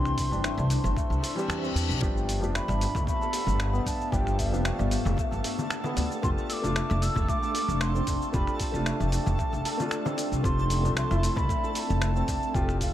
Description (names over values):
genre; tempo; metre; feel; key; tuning
organic downtempo; 114 BPM; 4/4; swing 54% on 16ths; D dorian; A4 = 441 Hz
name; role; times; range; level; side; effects
mellow bansuri; melody; 0.0-12.9 s; F5 to E6; -33 LUFS; right 1 dB; tape echo
felt-muted upright piano; accompaniment; 0.0-12.9 s; E3 to G4; -36 LUFS; left 2 dB; sidechain pumping, dub echo
ethereal airy pad; sustained chords; 0.0-12.9 s; B3 to F5; -36 LUFS; left 1 dB; ensemble chorus, built-in reverb, sidechain pumping
santur; arpeggios; 0.0-12.9 s; A3 to A4; -35 LUFS; equal; tape echo
upright bass; bass; 0.0-12.9 s; F1 to E2; -28 LUFS; equal; sidechain pumping
dusty soul sampler-style drum kit; drums; 0.1-12.9 s; cabasa, finger snaps, hi-hat; -35 LUFS; equal; dub echo
electronic kick drum; drums; 0.2-12.9 s; none; -30 LUFS; equal; none
reverse cymbal; sound effects; 1.2-2.0 s; none; -37 LUFS; left 8 dB; none
twinkling granular texture; texture; 3.2-12.9 s; A3 to A4; -40 LUFS; right 1 dB; built-in reverb
frame drum; percussion; 3.0-11.5 s; none; -36 LUFS; left 2 dB; dub echo
room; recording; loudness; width
light reverb, small room ambience; echo-heavy mix; -25 LUFS; side -12 dB against mid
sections
0.0-12.9 A section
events
reverse cymbal 1.2-2.0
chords
0.0 Cadd9; 2.0 G7; 10.4 F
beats
0.44 0.97 1.50 | 2.02 2.55 3.07 3.60 | 4.13 4.65 5.18 5.71 | 6.23 6.76 7.28 7.81 | 8.34 8.86 9.39 9.92 | 10.44 10.97 11.49 12.02 | 12.55